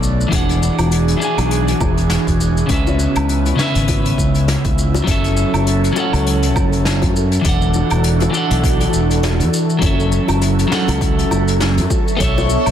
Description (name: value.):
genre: sunset chillout.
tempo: 101 BPM.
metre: 4/4.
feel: swing 57% on 16ths.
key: unclear.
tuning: A4 = 440 Hz.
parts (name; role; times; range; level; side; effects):
electric guitar at the edge of break-up; accompaniment; 0.0-12.7 s; C#3 to G#5; -19 LUFS; left 1 dB; auto-pan, tape echo.
airy breathy pad; sustained chords; 0.0-12.7 s; C#3 to C#6; -22 LUFS; right 1 dB; chorus, phaser.
modern bright fingered electric bass; bass; 0.0-12.7 s; E1 to F#2; -18 LUFS; equal; none.
vintage brush drum kit; drums; 0.0-12.7 s; hi-hat, shaker, snare drum, woodblock; -24 LUFS; equal; none.
electronic kick drum; drums; 0.3-12.3 s; none; -20 LUFS; equal; none.
bongos; percussion; 0.3-12.5 s; none; -27 LUFS; left 6 dB; none.
room: light reverb, studio ambience.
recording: dense, heavily limited modern master.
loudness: -13 LUFS.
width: side -10 dB against mid.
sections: 0.0-7.4 A section; 7.4-12.7 B section.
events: none.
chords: 0.3 E9; 2.7 C#m7; 5.1 F#m7; 7.4 E9sus4; 9.8 F#m7; 11.9 Bm11.